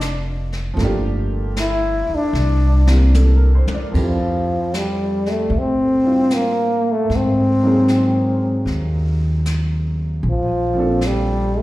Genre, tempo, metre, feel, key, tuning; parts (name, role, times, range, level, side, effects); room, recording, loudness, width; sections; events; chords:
jazz ballad; 76 BPM; 4/4; swing 66% on 8ths; F major; A4 = 440 Hz
warm upright piano; accompaniment; 0.0-11.6 s; Bb2 to D5; -24 LUFS; right 1 dB; slapback echo
upright bass; bass; 0.0-11.6 s; F1 to A2; -18 LUFS; equal
jazz brush drum kit; drums; 0.0-11.6 s; brushed snare drum, hi-hat, kick drum, ride cymbal, snare drum, toms; -30 LUFS; left 1 dB; slapback echo
clear trombone; melody; 1.6-11.6 s; F3 to E4; -18 LUFS; equal; slapback echo
moderate club reverb, RT60 0.7 s; live gig heard through the venue's PA, recital hall reverb; -15 LUFS; side -17 dB against mid
0.0-3.9 A section; 3.9-11.6 B section
trombone solo 0.0-3.9; drum fill 2.4-3.9
0.0 Bbmaj9 (rootless); 0.8 Gm7; 2.4 C9; 3.9 Fmaj9; 7.1 Ab9; 10.2 Bbmaj9